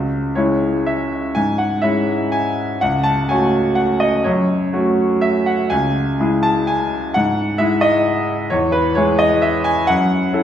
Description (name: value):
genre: classical, piano waltz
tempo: 117-137 BPM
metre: 3/4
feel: rubato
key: C# minor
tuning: A4 = 439 Hz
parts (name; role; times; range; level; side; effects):
- bright grand piano; solo; 0.0-10.4 s; C#2 to A5; -15 LUFS; equal; none
room: wet recital hall reverb, RT60 1.8 s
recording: recorded in a church or concert hall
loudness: -15 LUFS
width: side -10 dB against mid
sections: 0.0-10.4 A section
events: none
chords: 0.0 C#m; 2.8 F#m/C#; 8.5 E; 9.9 F#m7